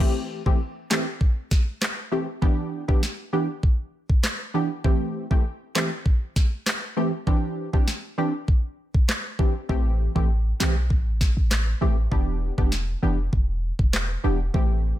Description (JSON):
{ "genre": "dancehall", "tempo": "99 BPM", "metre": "4/4", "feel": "straight", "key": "A minor", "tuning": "A4 = 439 Hz", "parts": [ { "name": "punchy chord stab", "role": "accompaniment", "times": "0.0-15.0 s", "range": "E3 to G4", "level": "-26 LUFS", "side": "right 1 dB", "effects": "chorus" }, { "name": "afro-pop drum kit", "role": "drums", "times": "0.0-14.7 s", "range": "crash cymbal, handclaps, kick drum, rim click, snare drum", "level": "-22 LUFS", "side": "equal", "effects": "none" }, { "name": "clean 808-style bass", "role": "bass", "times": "9.7-14.9 s", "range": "E1 to B1", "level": "-23 LUFS", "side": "equal", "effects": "none" } ], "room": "little or no reverb", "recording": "none", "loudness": "-21 LUFS", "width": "side -13 dB against mid", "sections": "0.0-15.0 A section", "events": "none", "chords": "0.0 Am7; 2.4 Em7; 4.8 Am7; 7.3 Cadd9; 9.7 Am7; 12.1 Em7" }